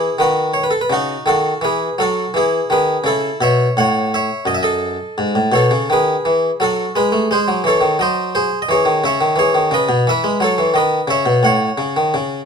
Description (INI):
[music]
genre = classical, baroque-style suite movement for harpsichord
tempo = 86 BPM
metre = 4/4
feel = rubato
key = C# minor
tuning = A4 = 437 Hz
[part]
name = harpsichord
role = solo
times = 0.0-12.5 s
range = F#2 to F#5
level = -14 LUFS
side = equal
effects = none
[sound]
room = light reverb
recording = dark, warm production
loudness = -14 LUFS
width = side -6 dB against mid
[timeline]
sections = 0.0-12.5 A section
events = none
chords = 0.2 B9; 1.6 E; 3.0 A; 4.5 D#dim/F#; 7.3 G#7; 8.7 C#m; 10.0 E5; 11.4 F#m/A